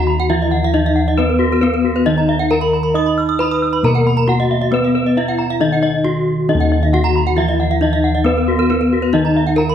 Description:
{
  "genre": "gamelan",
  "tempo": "136 BPM",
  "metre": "4/4",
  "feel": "straight",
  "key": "Eb pelog",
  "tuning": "A4 = 440 Hz",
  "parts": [
    { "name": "gamelan-type bronze metallophone", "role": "melody", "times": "0.0-9.7 s", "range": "Cb4 to Eb5", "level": "-17 LUFS", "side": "left 2 dB", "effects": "none" },
    { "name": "gamelan-type bronze metallophone", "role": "accompaniment", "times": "0.0-9.7 s", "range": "Eb3 to Eb4", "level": "-23 LUFS", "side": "right 6 dB", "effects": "none" },
    { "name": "gamelan-type bronze metallophone", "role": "arpeggios", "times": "0.0-9.7 s", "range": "Bb4 to Eb6", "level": "-23 LUFS", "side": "right 6 dB", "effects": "none" },
    { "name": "gamelan-type bossed gongs", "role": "bass", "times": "0.0-9.7 s", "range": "Eb2 to Eb5", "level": "-18 LUFS", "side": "left 1 dB", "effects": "none" },
    { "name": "gamelan-type bronze metallophone", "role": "arpeggios", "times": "0.1-9.7 s", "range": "Gb4 to Fb6+35c", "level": "-21 LUFS", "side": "left 3 dB", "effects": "none" }
  ],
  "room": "moderate recital hall reverb, RT60 1.4 s",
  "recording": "dark, warm production",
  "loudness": "-13 LUFS",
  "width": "side -9 dB against mid",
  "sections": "0.0-9.7 A section",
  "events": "none",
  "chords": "none",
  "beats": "0.30 0.74 | 1.19 1.63 2.07 2.51 | 2.96 3.40 3.84 4.28 | 4.72 5.17 5.61 6.05 | 6.49 6.93 7.38 7.82 | 8.26 8.70 9.14 9.59"
}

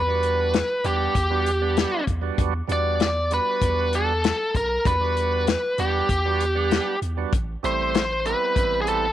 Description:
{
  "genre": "straight-eighth soul blues",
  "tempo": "97 BPM",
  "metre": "4/4",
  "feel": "straight",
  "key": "E minor",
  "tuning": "A4 = 439 Hz",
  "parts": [
    { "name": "biting lead guitar", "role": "melody", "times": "0.0-9.1 s", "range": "G4 to D5", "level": "-23 LUFS", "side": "equal", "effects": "overdrive" },
    { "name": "overdriven tonewheel organ", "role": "accompaniment", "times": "0.0-9.1 s", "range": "G3 to F#5", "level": "-29 LUFS", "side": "right 13 dB", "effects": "slow rotary speaker" },
    { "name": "punchy sub bass", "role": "bass", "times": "0.0-9.1 s", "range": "A1 to E2", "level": "-27 LUFS", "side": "right 1 dB", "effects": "none" },
    { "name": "warm soul drum kit", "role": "drums", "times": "0.2-9.0 s", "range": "hi-hat, kick drum, snare drum", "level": "-24 LUFS", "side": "left 3 dB", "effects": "none" }
  ],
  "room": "light reverb, studio reverb",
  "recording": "1960s-style stereo",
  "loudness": "-20 LUFS",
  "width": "side -12 dB against mid",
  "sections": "0.0-9.1 A section",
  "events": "none",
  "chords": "0.0 Em9; 7.3 Am9",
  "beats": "0.53 1.15 1.77 | 2.39 3.00 3.62 4.24 | 4.86 5.47 6.09 6.71 | 7.33 7.94 8.56"
}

